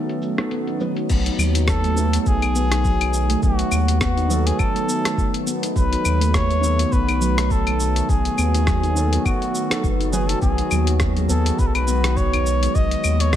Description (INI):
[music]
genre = organic downtempo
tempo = 103 BPM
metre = 4/4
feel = swing 56% on 16ths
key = B mixolydian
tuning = A4 = 441 Hz
[part]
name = felt-muted upright piano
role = accompaniment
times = 0.0-13.4 s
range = D#3 to B4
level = -30 LUFS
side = right 2 dB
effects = sidechain pumping, digital delay
[part]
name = warbly tape-like pad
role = sustained chords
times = 0.0-13.4 s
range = D#3 to F#4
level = -29 LUFS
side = left 1 dB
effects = chorus, built-in reverb, sidechain pumping
[part]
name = handpan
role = arpeggios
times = 0.0-13.4 s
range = F#3 to D#4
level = -25 LUFS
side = equal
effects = digital delay
[part]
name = dusty soul sampler-style drum kit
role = drums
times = 0.1-13.4 s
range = cabasa, claves, crash cymbal, hi-hat, rim click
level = -26 LUFS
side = left 2 dB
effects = low-pass filter on hats, low-pass filter on perc, low-pass filter on snare, low-pass filter on cymbals, low-pass filter on room
[part]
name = round analog bass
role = bass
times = 1.1-13.4 s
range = F#1 to D#2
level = -20 LUFS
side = equal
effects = sidechain pumping
[part]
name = electronic kick drum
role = drums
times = 1.1-13.4 s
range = none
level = -22 LUFS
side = equal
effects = none
[part]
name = trumpet with cup mute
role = melody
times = 1.7-13.4 s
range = F#4 to D#5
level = -25 LUFS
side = equal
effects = digital delay
[part]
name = udu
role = percussion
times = 11.3-12.4 s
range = none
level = -28 LUFS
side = right 1 dB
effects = none
[sound]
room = light reverb, studio reverb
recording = none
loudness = -17 LUFS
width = side -10 dB against mid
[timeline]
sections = 0.0-1.1 A section; 1.1-13.4 B section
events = filter sweep on handpan 0.0-1.1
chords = 0.0 B7; 10.4 G#m7/B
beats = 0.52 | 1.10 1.68 2.26 2.85 | 3.43 4.01 4.59 5.18 | 5.76 6.34 6.92 7.51 | 8.09 8.67 9.25 9.84 | 10.42 11.00 11.58 12.17 | 12.75 13.33